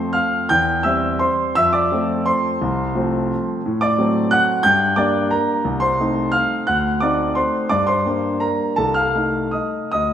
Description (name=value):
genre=classical, piano waltz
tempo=144-190 BPM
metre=3/4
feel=rubato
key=G minor from 3.6 s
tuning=A4 = 442 Hz
part: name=warm concert grand piano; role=solo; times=0.0-10.1 s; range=C2 to G6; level=-16 LUFS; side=equal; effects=none
room=wet scoring stage reverb, RT60 1.8 s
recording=recorded in a church or concert hall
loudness=-16 LUFS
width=side -9 dB against mid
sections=0.0-10.1 A section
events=none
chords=0.5 C/E; 1.6 F; 3.6 D7/A; 4.6 Gm; 5.6 Adim/C; 6.7 D7b9; 7.7 Gm; 8.8 Adim/C